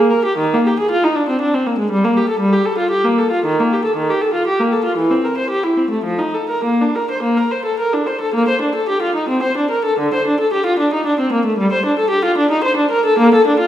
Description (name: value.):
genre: classical, baroque-style suite movement for unaccompanied viola.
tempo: 96-121 BPM.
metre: 3/4.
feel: rubato.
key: Bb major.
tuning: A4 = 440 Hz.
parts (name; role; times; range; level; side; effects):
warm viola; solo; 0.0-13.7 s; D3 to C5; -14 LUFS; equal; none.
room: wet recital hall reverb, RT60 1.4 s.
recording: heard from further back in the room.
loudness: -14 LUFS.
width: side -11 dB against mid.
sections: 0.0-8.3 A section; 8.3-13.7 B section.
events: none.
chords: none.